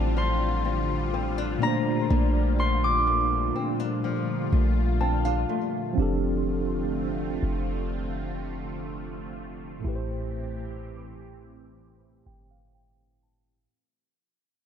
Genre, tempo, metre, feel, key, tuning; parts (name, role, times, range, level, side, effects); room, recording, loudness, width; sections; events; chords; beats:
contemporary R&B; 62 BPM; 4/4; straight; A4 = 443 Hz
concert harp; melody; 0.0-4.7 s; G5 to D6; -28 LUFS; equal; digital delay
mellow tine electric piano; accompaniment; 0.0-13.7 s; A2 to A5; -31 LUFS; right 1 dB; medium stereo tremolo, low-pass filter
lush unison pad; sustained chords; 0.0-13.7 s; Bb2 to G4; -34 LUFS; right 1 dB; chorus, phaser, low-pass filter
flamenco guitar; arpeggios; 0.0-6.6 s; A2 to D4; -31 LUFS; left 8 dB; digital delay
clean 808-style bass; bass; 0.0-13.7 s; F1 to Bb1; -28 LUFS; equal
light reverb, small room ambience; dark, warm production; -24 LUFS; side -8 dB against mid
0.0-6.0 A section; 6.0-13.7 B section
tine electric piano fill 4.5-6.0, 11.8-13.7; fade-out 6.0-13.7; filter sweep 6.0-13.7
0.0 Dm7/A; 1.6 Bbmaj7; 6.0 F6; 9.8 Am7
0.17 1.14 | 2.10 3.07 4.04 5.01 | 5.98 6.94 7.91 8.88 | 9.85 10.81 11.78 12.75